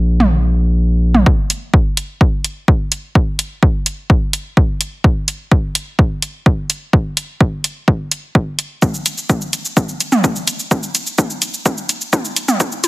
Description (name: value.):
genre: melodic techno.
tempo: 127 BPM.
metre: 4/4.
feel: straight.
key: unclear.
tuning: A4 = 440 Hz.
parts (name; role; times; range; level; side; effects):
round analog bass; bass; 0.0-1.2 s; Bb1; -13 LUFS; equal; sidechain pumping.
deep house drum kit; drums; 0.2-12.9 s; hi-hat, shaker, toms; -17 LUFS; equal; overdrive.
electronic kick drum; drums; 1.3-12.7 s; none; -13 LUFS; equal; none.
room: digital ambience.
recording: heavily compressed radio sound, multiband compression, high-pass filter.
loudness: -14 LUFS.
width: side -20 dB against mid.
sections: 0.0-1.3 A section; 1.3-12.9 B section.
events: build-up 1.3-12.9; filter sweep 1.3-12.9; drum fill 8.8-12.9.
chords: none.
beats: 0.32 0.79 | 1.26 1.74 2.21 2.68 | 3.15 3.63 4.10 4.57 | 5.04 5.52 5.99 6.46 | 6.93 7.41 7.88 8.35 | 8.82 9.30 9.77 10.24 | 10.71 11.19 11.66 12.13 | 12.60.